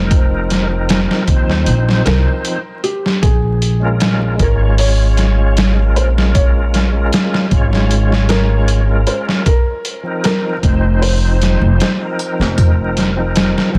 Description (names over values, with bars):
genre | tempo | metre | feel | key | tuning
trip hop | 77 BPM | 4/4 | straight | Bb minor | A4 = 440 Hz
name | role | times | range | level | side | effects
felt-muted upright piano | melody | 0.0-13.8 s | G4 to Db5 | -26 LUFS | equal | tape echo
bright tonewheel organ | accompaniment | 0.0-13.8 s | F3 to Db5 | -23 LUFS | equal | overdrive, chorus vibrato, fast rotary speaker, tremolo, tape echo
upright bass | bass | 0.0-13.8 s | F1 to Eb2 | -17 LUFS | equal | none
trip hop sampler-style drum kit | drums | 0.1-13.7 s | hi-hat, kick drum, snare drum | -18 LUFS | equal | none
room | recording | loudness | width
little or no reverb | dense, heavily limited modern master, vinyl crackle | -14 LUFS | mono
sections
0.0-13.8 A section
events
none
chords
0.0 F7sus4; 3.2 Bbm7; 9.5 F7sus4